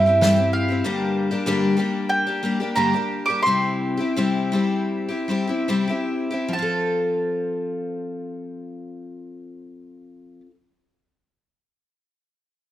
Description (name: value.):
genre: folk.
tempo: 68-96 BPM.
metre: 4/4.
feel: straight.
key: F major.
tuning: A4 = 441 Hz.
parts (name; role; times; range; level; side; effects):
mandolin; melody; 0.0-10.4 s; E5 to D6; -22 LUFS; right 2 dB; none.
picked twelve-string acoustic guitar; accompaniment; 0.0-10.5 s; G2 to A4; -22 LUFS; left 2 dB; none.
upright bass; bass; 0.0-0.8 s; G2; -24 LUFS; equal; none.
room: light reverb.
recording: none.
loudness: -20 LUFS.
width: side -12 dB against mid.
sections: 0.0-6.5 A section; 6.5-10.0 B section.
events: slowing down 0.8-6.5.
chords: 0.0 C; 0.8 Gm; 3.4 C; 6.5 F.